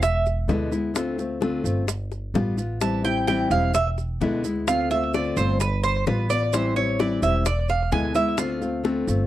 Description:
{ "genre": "latin, Cuban son and guajira", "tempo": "129 BPM", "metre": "4/4", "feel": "straight", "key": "A minor", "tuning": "A4 = 439 Hz", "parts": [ { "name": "nylon-string guitar", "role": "accompaniment", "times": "0.0-9.3 s", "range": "B2 to F4", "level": "-25 LUFS", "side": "left 2 dB", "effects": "none" }, { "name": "Cuban tres", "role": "arpeggios", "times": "0.0-8.8 s", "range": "B4 to A5", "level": "-24 LUFS", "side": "right 3 dB", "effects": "slapback echo" }, { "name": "upright bass", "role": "bass", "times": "0.0-9.3 s", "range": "E1 to D2", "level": "-26 LUFS", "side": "right 1 dB", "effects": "none" }, { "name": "bongos", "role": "percussion", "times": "0.0-9.1 s", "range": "none", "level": "-28 LUFS", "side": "left 7 dB", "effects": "none" }, { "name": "maracas", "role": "percussion", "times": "0.0-9.3 s", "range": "none", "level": "-36 LUFS", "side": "right 17 dB", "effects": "none" } ], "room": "little or no reverb", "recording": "dry, close 1970s-style studio recording", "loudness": "-21 LUFS", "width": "side -13 dB against mid", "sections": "0.0-9.3 A section", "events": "Cuban tres solo 0.0-9.3", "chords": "0.0 E7; 1.0 Dm7; 1.9 G7; 2.8 Am7; 3.7 E7; 4.7 Dm7; 5.6 G7; 6.5 Am7; 7.5 E7; 8.4 Dm7" }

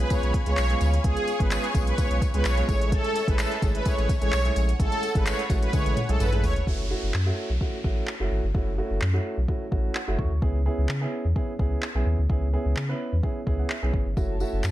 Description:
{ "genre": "dance-pop", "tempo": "128 BPM", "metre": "4/4", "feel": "straight", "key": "F# minor", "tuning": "A4 = 440 Hz", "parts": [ { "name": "supersaw pad", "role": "melody", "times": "0.0-6.5 s", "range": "G#4 to C#5", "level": "-29 LUFS", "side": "equal", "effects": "sidechain pumping, ping-pong delay" }, { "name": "dark grand piano", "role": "accompaniment", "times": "0.0-14.6 s", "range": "G#3 to C#6", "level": "-31 LUFS", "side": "right 2 dB", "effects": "sidechain pumping" }, { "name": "warm symphonic string section", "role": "sustained chords", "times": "0.0-6.7, 14.2-14.7 s", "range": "F#4 to C#6", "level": "-37 LUFS", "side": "equal", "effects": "sidechain pumping" }, { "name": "sub bass with octave", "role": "bass", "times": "0.0-14.7 s", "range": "F#1 to C#3", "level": "-25 LUFS", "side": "equal", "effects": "sidechain pumping" }, { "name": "smooth R&B drum kit", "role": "drums", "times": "0.1-14.7 s", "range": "handclaps, hi-hat, kick drum, toms", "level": "-27 LUFS", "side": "equal", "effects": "none" }, { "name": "tambourine", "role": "percussion", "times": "0.1-6.6, 14.2-14.7 s", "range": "none", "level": "-44 LUFS", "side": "left 12 dB", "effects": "none" }, { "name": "downlifter", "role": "sound effects", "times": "6.7-10.4 s", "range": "none", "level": "-40 LUFS", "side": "equal", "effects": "none" } ], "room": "little or no reverb", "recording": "dark, warm production", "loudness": "-22 LUFS", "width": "side -14 dB against mid", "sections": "0.0-6.7 A section; 6.7-14.7 B section", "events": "drop 0.0-6.7; drum fill 5.7-6.7; grand piano fill 9.5-10.4, 13.2-14.2", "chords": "0.0 C#7; 2.7 Amaj7; 6.7 F#m7; 10.4 C#m7; 14.2 F#m7" }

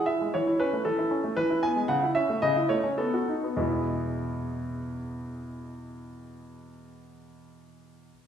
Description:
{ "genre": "classical-period piano sonatina", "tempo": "99-116 BPM", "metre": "2/4", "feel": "rubato", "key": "E major", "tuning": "A4 = 441 Hz", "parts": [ { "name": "bright concert grand piano", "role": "solo", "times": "0.0-8.1 s", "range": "E2 to G#5", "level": "-26 LUFS", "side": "equal", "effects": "none" } ], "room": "wet recital hall reverb, RT60 1.5 s", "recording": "heard from further back in the room, lossy compression artefacts", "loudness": "-25 LUFS", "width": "side -8 dB against mid", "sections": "0.0-3.6 A section; 3.6-5.9 B section", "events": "slowing down 0.9-3.6", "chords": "0.3 A/E; 1.4 E; 1.9 A/C#; 3.0 B7; 3.6 E" }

